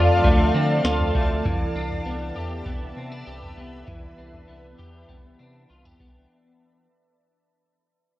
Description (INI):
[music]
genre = dream pop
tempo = 99 BPM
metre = 4/4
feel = straight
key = C major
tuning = A4 = 445 Hz
[part]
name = granular cloud pad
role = sustained chords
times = 0.0-6.3 s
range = A4 to A5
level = -25 LUFS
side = equal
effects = built-in reverb
[part]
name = electric guitar at the edge of break-up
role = arpeggios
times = 0.0-6.9 s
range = E3 to G4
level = -28 LUFS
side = left 1 dB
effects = ensemble chorus, digital delay
[part]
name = round analog bass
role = bass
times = 0.0-6.3 s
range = C2 to D3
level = -26 LUFS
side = equal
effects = none
[part]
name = booming analog drum machine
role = drums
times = 0.2-6.2 s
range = kick drum, snare drum, toms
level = -24 LUFS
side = equal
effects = none
[sound]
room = light reverb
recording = worn, warbling old tape, cassette tape, warbly pitch drift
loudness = -20 LUFS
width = side -15 dB against mid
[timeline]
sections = 0.0-6.3 A section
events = fade-out 0.0-6.3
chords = 0.0 Dm7; 1.5 Cmaj9